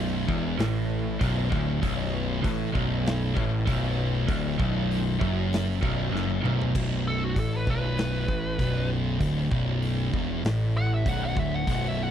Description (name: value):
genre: stoner and doom metal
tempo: 97 BPM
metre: 4/4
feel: straight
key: B minor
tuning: A4 = 440 Hz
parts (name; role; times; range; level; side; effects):
- overdriven electric guitar; riff; 0.0-6.7 s; B1 to A2; -32 LUFS; equal; none
- thick fuzz guitar; riff; 0.0-12.1 s; B1 to A2; -29 LUFS; left 7 dB; distortion
- thick fuzz guitar; riff; 0.0-12.1 s; B1 to A2; -30 LUFS; right 7 dB; distortion
- fuzz picked electric bass; bass; 0.0-12.1 s; B0 to A1; -31 LUFS; equal; overdrive
- big rock drum kit; drums; 0.3-11.8 s; crash cymbal, hi-hat, kick drum, snare drum, toms; -30 LUFS; equal; none
- fuzz lead guitar; melody; 7.1-12.1 s; F#4 to F#5; -31 LUFS; equal; wah, distortion, slapback echo
room: little or no reverb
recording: dry, close 1970s-style studio recording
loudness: -24 LUFS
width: side -9 dB against mid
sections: 0.0-6.7 A section; 6.7-12.1 B section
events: drum fill 6.1-6.7; lead electric guitar solo 6.7-12.1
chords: 0.0 Bm